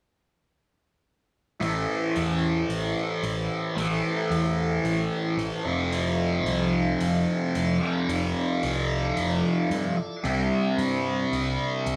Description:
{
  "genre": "psychedelic rock",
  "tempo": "111 BPM",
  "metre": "4/4",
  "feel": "straight",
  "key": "A minor",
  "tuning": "A4 = 439 Hz",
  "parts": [
    { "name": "tonewheel organ", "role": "sustained chords", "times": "1.6-12.0 s", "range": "D4 to D5", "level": "-37 LUFS", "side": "equal", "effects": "slow rotary speaker, overdrive" },
    { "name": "fuzz guitar", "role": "riff", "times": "1.6-12.0 s", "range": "F2 to C4", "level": "-27 LUFS", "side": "equal", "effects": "distortion, phaser" },
    { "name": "picked electric bass", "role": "bass", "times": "1.6-12.0 s", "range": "F1 to G2", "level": "-32 LUFS", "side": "equal", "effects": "none" },
    { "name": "hi-hat", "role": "drums", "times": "1.6-12.0 s", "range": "none", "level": "-44 LUFS", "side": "equal", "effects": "none" }
  ],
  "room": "light reverb, studio reverb",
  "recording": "none",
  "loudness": "-26 LUFS",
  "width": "mono",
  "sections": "1.6-12.0 A section",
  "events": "none",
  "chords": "1.6 Am7; 5.7 Fmaj7; 10.2 Cadd9",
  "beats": "| 1.62 2.15 2.69 3.23 | 3.77 4.31 4.85 5.39 | 5.93 6.47 7.01 7.55 | 8.09 8.63 9.17 9.71 | 10.25 10.79 11.32 11.87"
}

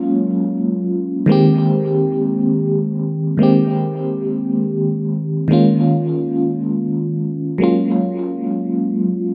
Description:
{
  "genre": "R&B",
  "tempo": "57 BPM (dotted quarters)",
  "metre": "6/8",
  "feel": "straight",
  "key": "Ab major",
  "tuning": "A4 = 442 Hz",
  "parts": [
    { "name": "FM electric piano with tremolo", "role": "solo", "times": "0.0-9.3 s", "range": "Eb3 to G4", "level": "-17 LUFS", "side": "equal", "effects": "phaser, dub echo" }
  ],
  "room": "moderate spring reverb, RT60 1.4 s, digital ambience",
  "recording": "echo-heavy mix",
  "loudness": "-17 LUFS",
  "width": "mono",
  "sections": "0.0-3.4 A section; 3.4-9.3 B section",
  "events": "none",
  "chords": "0.0 Gbmaj9; 1.3 Abmaj9; 5.5 Db69; 7.6 Gbmaj9",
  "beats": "0.23 | 1.29 2.34 | 3.39 4.45 | 5.50 6.55 | 7.60 8.66"
}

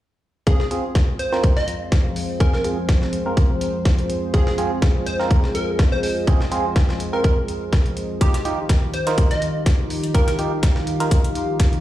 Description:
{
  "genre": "bass house",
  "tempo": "124 BPM",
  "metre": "4/4",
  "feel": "swing 54% on 16ths",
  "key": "F minor",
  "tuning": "A4 = 440 Hz",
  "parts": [
    { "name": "plucky unison lead", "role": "melody", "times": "0.5-10.3 s", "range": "G4 to Eb5", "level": "-28 LUFS", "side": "equal", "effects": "ping-pong delay" },
    { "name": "dark analog pad", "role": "sustained chords", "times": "0.7-11.8 s", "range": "Eb3 to C5", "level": "-26 LUFS", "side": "left 1 dB", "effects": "chorus, sidechain pumping" },
    { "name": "percussive organ stab", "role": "stabs", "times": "0.5-11.2 s", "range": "C4 to Bb4", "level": "-27 LUFS", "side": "right 2 dB", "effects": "chorus, sidechain pumping, ping-pong delay" },
    { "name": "breakbeat sampler-style drum kit", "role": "drums", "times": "0.5-11.8 s", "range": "hi-hat, snare drum", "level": "-32 LUFS", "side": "equal", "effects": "sidechain pumping on hats, high-pass filter on hats, high-pass filter on snare" },
    { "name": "electronic kick drum", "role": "drums", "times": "0.5-11.7 s", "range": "none", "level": "-16 LUFS", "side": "equal", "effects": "none" },
    { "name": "warbly tape-like pad", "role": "texture", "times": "1.1-11.8 s", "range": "C4 to F5", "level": "-31 LUFS", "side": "right 1 dB", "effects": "chorus, built-in reverb, sidechain pumping" },
    { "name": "electronic hi-hat", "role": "drums", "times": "8.2-11.7 s", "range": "none", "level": "-34 LUFS", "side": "left 3 dB", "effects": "none" }
  ],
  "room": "light reverb, digital ambience",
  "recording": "played on a big sound system in a bare room, large studio reverb",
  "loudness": "-17 LUFS",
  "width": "side -14 dB against mid",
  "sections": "0.5-11.8 A section",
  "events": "filter sweep on synth stab 0.5-11.8",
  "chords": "0.5 Fm; 8.2 Ebadd9",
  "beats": "| 0.47 0.95 1.44 1.92 | 2.40 2.89 3.37 3.85 | 4.34 4.82 5.31 5.79 | 6.27 6.76 7.24 7.73 | 8.21 8.69 9.18 9.66 | 10.14 10.63 11.11 11.60"
}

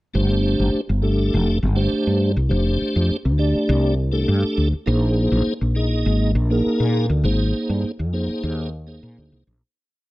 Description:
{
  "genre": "electric jazz fusion",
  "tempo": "101 BPM",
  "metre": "4/4",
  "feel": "straight",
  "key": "unclear",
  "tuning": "A4 = 441 Hz",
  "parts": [
    { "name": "tonewheel organ", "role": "accompaniment", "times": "0.1-9.4 s", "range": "A3 to Eb5", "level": "-22 LUFS", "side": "equal", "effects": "chorus vibrato, slow rotary speaker, plate reverb" },
    { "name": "woody fretless electric bass", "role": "bass", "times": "0.1-9.6 s", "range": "F1 to Bb2", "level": "-19 LUFS", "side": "equal", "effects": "analog chorus" }
  ],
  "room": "light reverb",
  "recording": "dark, warm production",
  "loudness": "-18 LUFS",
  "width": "side -19 dB against mid",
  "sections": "0.1-9.6 groove",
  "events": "fade-out 7.2-9.6",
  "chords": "0.1 G9sus4; 4.9 Bb9sus4",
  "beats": "| 0.14 0.73 1.32 1.92 | 2.51 3.10 3.69 4.28 | 4.87 5.46 6.06 6.65 | 7.24 7.84 8.43 9.03"
}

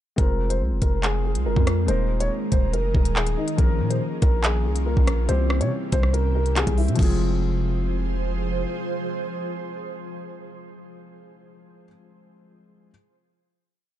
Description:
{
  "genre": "hip hop, drill",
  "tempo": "141 BPM",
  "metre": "4/4",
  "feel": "half-time",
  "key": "F minor",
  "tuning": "A4 = 441 Hz",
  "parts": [
    { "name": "dark concert grand piano", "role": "melody", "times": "0.2-8.2 s", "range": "Eb4 to Db5", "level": "-29 LUFS", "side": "left 1 dB", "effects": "none" },
    { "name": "felt-muted upright piano", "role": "accompaniment", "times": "0.2-12.9 s", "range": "E3 to C5", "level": "-32 LUFS", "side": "left 4 dB", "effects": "none" },
    { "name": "ethereal airy pad", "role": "sustained chords", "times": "0.7-11.2 s", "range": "C3 to C5", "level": "-30 LUFS", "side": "right 2 dB", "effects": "ensemble chorus, built-in reverb" },
    { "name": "hard-hitting 808-style bass", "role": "bass", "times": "0.2-8.7 s", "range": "Eb1 to C3", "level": "-23 LUFS", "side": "equal", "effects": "none" },
    { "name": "drill drum kit", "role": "drums", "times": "0.2-7.1 s", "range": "crash cymbal, handclaps, hi-hat, kick drum, rim click", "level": "-22 LUFS", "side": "equal", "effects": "none" }
  ],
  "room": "digital ambience",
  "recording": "dark, warm production, nothing above 11.0 kHz",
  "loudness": "-20 LUFS",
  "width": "side -12 dB against mid",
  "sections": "0.2-7.0 hook; 7.0-10.4 final chord",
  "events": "none",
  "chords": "0.2 Fm; 1.9 Ebsus4; 3.6 Bbm; 5.3 C; 7.0 Fm",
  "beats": "| 0.18 0.61 1.03 1.46 | 1.88 2.31 2.73 3.16 | 3.58 4.01 4.44 4.86 | 5.29 5.71 6.14 6.56 | 6.99 7.42 7.84 8.27 | 8.69 9.12 9.54 9.97"
}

